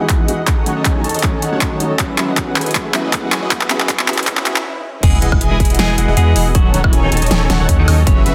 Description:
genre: future bass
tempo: 158 BPM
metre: 4/4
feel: swing 53% on 16ths, half-time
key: unclear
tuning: A4 = 440 Hz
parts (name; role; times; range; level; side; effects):
- felt-muted upright piano; accompaniment; 0.0-4.6 s; E3 to G#4; -27 LUFS; equal; sidechain pumping, digital delay
- shimmering ambient pad; sustained chords; 0.0-8.3 s; C#2 to F#5; -31 LUFS; equal; none
- concert harp; arpeggios; 0.0-8.3 s; B3 to C#5; -30 LUFS; equal; none
- big bright polysynth; riff; 0.0-8.3 s; D#3 to B5; -23 LUFS; equal; lush chorus, sidechain pumping
- riser, swell and sub drop; sound effects; 2.1-6.5 s; none; -29 LUFS; equal; none
- dubstep drum kit; drums; 0.1-8.3 s; crash cymbal, handclaps, hi-hat, snare drum, woodblock; -21 LUFS; equal; overdrive
- electronic kick drum; drums; 0.1-8.2 s; none; -18 LUFS; equal; none
- clean electric guitar; melody; 5.0-8.2 s; D#3 to C#5; -24 LUFS; equal; tremolo, sidechain pumping, dub echo
- long sustained 808-style bass; bass; 5.0-8.3 s; D#1 to E2; -18 LUFS; equal; sidechain pumping
room: light reverb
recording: dense, heavily limited modern master, high-pass filter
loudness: -15 LUFS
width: mono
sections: 0.0-5.0 A section; 5.0-8.3 B section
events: build-up 0.0-5.0; drum fill 0.0-4.7; filter sweep on analog polysynth 0.0-5.0; filter sweep 0.0-5.0; swell 4.3-5.0; stop 4.7-5.0; drop 5.0-8.3; impact 5.0-6.5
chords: 0.5 D#m7b5; 2.0 F#9sus4; 3.3 C#m9; 5.0 Emaj9; 6.5 D#m7b5

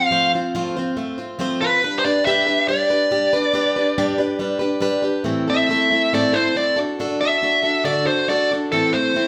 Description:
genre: rock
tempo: 140 BPM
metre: 4/4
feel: straight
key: A dorian from 5.3 s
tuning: A4 = 440 Hz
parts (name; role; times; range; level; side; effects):
- dark smooth lead guitar; melody; 0.0-9.3 s; A4 to F5; -20 LUFS; equal; overdrive
- picked plugged-in steel-string acoustic guitar; accompaniment; 0.0-9.3 s; A2 to C5; -24 LUFS; equal; none
room: wet large studio reverb, RT60 1.1 s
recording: band playing live in one room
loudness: -19 LUFS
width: mono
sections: 0.0-5.3 A section; 5.3-9.3 B section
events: lead electric guitar solo 5.3-9.3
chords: 0.0 F; 1.8 G; 5.3 Am; 6.8 D; 8.7 Am

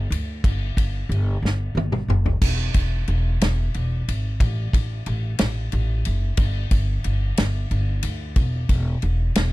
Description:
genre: folk rock and heartland rock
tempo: 61 BPM (dotted quarters)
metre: 6/8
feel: straight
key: E minor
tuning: A4 = 440 Hz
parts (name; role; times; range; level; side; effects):
- upright bass; bass; 0.0-9.5 s; E1 to D2; -22 LUFS; equal; none
- natural country drum kit; drums; 0.1-9.5 s; crash cymbal, kick drum, ride cymbal, snare drum, toms; -24 LUFS; equal; none
room: little or no reverb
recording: dry, close 1970s-style studio recording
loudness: -20 LUFS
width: side -18 dB against mid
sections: 0.0-9.5 A section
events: drum fill 1.4-2.4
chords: none

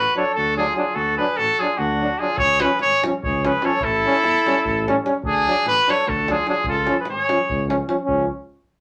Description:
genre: balkan folk, Balkan brass band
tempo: 295 BPM (eighths)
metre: 7/8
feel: straight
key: C# phrygian dominant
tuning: A4 = 440 Hz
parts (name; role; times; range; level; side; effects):
- clear trumpet; melody; 0.0-7.7 s; F#4 to C#5; -22 LUFS; equal; none
- mellow trumpet; second line; 0.0-7.7 s; D4 to A4; -29 LUFS; equal; none
- mellow tuba; bass; 0.0-8.3 s; G#1 to E2; -31 LUFS; equal; none
- brilliant trombone; accompaniment; 0.2-8.3 s; C#4 to D4; -26 LUFS; equal; none
- mellow euphonium; accompaniment; 0.2-8.3 s; E#3 to G3; -33 LUFS; equal; none
- davul; percussion; 2.4-8.3 s; none; -34 LUFS; equal; none
room: wet small room ambience, RT60 0.5 s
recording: none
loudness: -20 LUFS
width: mono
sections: 0.0-8.1 A section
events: none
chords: 0.0 D; 2.4 C#; 3.8 A7; 5.2 D; 6.7 C#

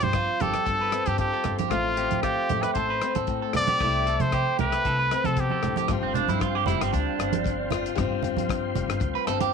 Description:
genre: highlife guitar band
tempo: 115 BPM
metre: 4/4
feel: straight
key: G mixolydian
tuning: A4 = 438 Hz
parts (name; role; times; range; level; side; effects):
- bright trumpet; melody; 0.0-5.8 s; F4 to D5; -26 LUFS; left 1 dB; none
- picked steel-string acoustic guitar; accompaniment; 0.0-9.5 s; G2 to F4; -30 LUFS; left 13 dB; none
- electric guitar at the edge of break-up; arpeggios; 0.0-9.5 s; C4 to B4; -29 LUFS; right 12 dB; phaser, slapback echo
- upright bass; bass; 0.0-9.5 s; F1 to C3; -30 LUFS; equal; none
- warm soul drum kit; drums; 0.0-9.5 s; hi-hat, kick drum, rim click; -32 LUFS; left 4 dB; none
- congas; percussion; 0.0-9.5 s; none; -31 LUFS; right 10 dB; none
- tonewheel organ; sustained chords; 5.9-9.5 s; F5 to C6; -36 LUFS; equal; chorus vibrato, slow rotary speaker
room: light reverb, studio reverb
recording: 1960s-style stereo with parts hard left and right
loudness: -23 LUFS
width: side -6 dB against mid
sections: 0.0-5.9 A section; 5.9-9.5 B section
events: clean electric guitar solo 5.9-9.5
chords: 0.0 G7sus4; 1.7 F/A; 3.8 C6; 5.9 G7sus4

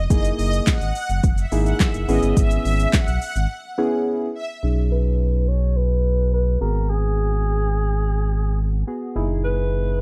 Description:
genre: dance-pop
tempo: 106 BPM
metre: 4/4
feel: straight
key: B major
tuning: A4 = 439 Hz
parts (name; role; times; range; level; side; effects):
- sub bass with octave; bass; 0.0-10.0 s; F#1 to B1; -23 LUFS; equal; sidechain pumping
- supersaw pad; melody; 0.1-4.4 s; D#5 to F#5; -30 LUFS; equal; phaser, sidechain pumping, slapback echo
- soft electric-piano-like synth keys; accompaniment; 0.1-10.0 s; A#2 to G#4; -29 LUFS; equal; chorus, sidechain pumping, low-pass filter
- deep house drum kit; drums; 0.1-3.5 s; handclaps, hi-hat, kick drum, shaker, snare drum; -23 LUFS; equal; none
- warm alto saxophone; melody; 4.9-10.0 s; G#4 to C#5; -29 LUFS; equal; low-pass filter, slapback echo
room: little or no reverb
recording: dry, close 1970s-style studio recording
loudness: -21 LUFS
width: mono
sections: 0.0-4.6 A section; 4.6-10.0 B section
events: drop 0.0-4.6; break 3.5-4.6; filter sweep 4.6-10.0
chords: 0.1 F#13; 2.1 E6; 4.6 B69; 6.6 G#m7; 9.2 F#13

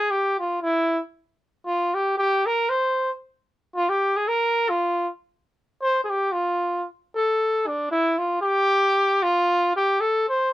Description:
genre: alpine folk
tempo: 115 BPM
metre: 2/4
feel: swing 54% on 8ths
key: F harmonic minor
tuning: A4 = 440 Hz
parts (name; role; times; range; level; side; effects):
- clear trumpet; solo; 0.0-10.5 s; D4 to C5; -20 LUFS; equal; none
room: light reverb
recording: dry, close 1970s-style studio recording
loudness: -20 LUFS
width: side -15 dB against mid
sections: 0.0-7.4 A section; 7.4-10.5 B section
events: none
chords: none

